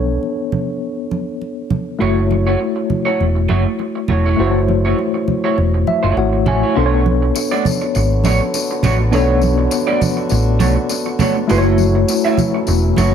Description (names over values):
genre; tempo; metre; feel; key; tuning
lush 1970s-style soul; 101 BPM; 4/4; swing 54% on 16ths; B minor; A4 = 440 Hz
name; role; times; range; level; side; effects
tine electric piano; accompaniment; 0.0-13.1 s; A3 to G#5; -18 LUFS; left 3 dB; overdrive, fast stereo tremolo
hollow-body short-scale fingered electric bass; bass; 0.0-13.1 s; E1 to B1; -16 LUFS; equal; none
congas; percussion; 0.2-13.1 s; none; -21 LUFS; right 4 dB; none
electric guitar through a small old amp; riff; 2.0-13.1 s; A3 to E5; -21 LUFS; right 6 dB; lush chorus
mellow French horn section; sustained chords; 6.8-13.1 s; D3 to C#5; -25 LUFS; left 3 dB; none
tambourine; percussion; 7.4-13.1 s; none; -28 LUFS; left 7 dB; none
room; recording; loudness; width
light reverb, studio reverb; none; -14 LUFS; side -8 dB against mid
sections
0.0-6.8 A section; 6.8-13.1 B section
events
tine electric piano fill 5.6-6.8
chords
0.0 Bm9; 2.0 F#m7; 6.8 Bm9; 11.5 F#m7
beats
0.23 0.82 1.42 | 2.01 2.60 3.20 3.79 | 4.39 4.98 5.58 6.17 | 6.76 7.35 7.95 8.54 | 9.13 9.72 10.31 10.90 | 11.49 12.08 12.67